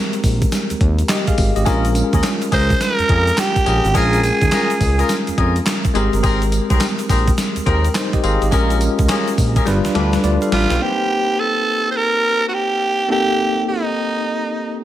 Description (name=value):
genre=R&B, new jack swing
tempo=105 BPM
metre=4/4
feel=swing 64% on 16ths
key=Bb dorian, C dorian from 10.8 s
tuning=A4 = 438 Hz
part: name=bell-like tine electric piano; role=accompaniment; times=0.0-14.8 s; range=G3 to G5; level=-21 LUFS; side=left 1 dB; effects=fast stereo tremolo
part: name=gated 80s digital drum machine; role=drums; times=0.1-10.8 s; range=handclaps, hi-hat, kick drum, snare drum, tambourine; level=-19 LUFS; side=equal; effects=gated reverb, gated reverb snare
part: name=egg shaker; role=percussion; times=0.1-10.8 s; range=none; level=-36 LUFS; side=right 7 dB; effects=none
part: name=smooth synth bass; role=bass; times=0.2-10.8 s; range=G1 to F2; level=-18 LUFS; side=equal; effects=none
part: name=warm horn section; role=stabs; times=1.7-10.7 s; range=C4 to B4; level=-24 LUFS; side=left 3 dB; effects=tape echo
part: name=raspy tenor saxophone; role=melody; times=2.5-5.1, 10.5-14.8 s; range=Eb4 to C5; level=-18 LUFS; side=right 2 dB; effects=none
room=light reverb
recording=none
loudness=-15 LUFS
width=side -12 dB against mid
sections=0.0-10.8 A section; 10.8-14.8 A section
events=drum fill 9.7-10.8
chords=0.0 Abmaj9; 1.7 Bbm7; 6.0 Abmaj9; 8.5 Bbm7; 9.7 G7; 10.8 Cm7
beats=0.52 1.09 | 1.67 2.24 2.81 3.38 | 3.95 4.52 5.09 5.67 | 6.24 6.81 7.38 7.95 | 8.52 9.09 9.66 10.24 | 10.81 11.38 11.95 12.52 | 13.09 13.66 14.24 14.81